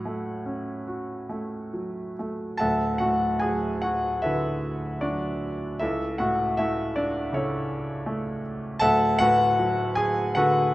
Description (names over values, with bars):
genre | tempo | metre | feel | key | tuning
classical, lyrical solo piano | 65-82 BPM | 4/4 | rubato | unclear | A4 = 436 Hz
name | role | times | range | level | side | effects
warm grand piano | solo | 0.0-10.7 s | D1 to A5 | -23 LUFS | equal | none
room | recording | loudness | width
light reverb | close, detailed microphones | -23 LUFS | side -16 dB against mid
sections
0.0-2.6 A section; 2.6-10.7 B section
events
none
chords
0.0 F#m/A; 2.6 D69; 5.8 F#m7/C#; 8.8 D69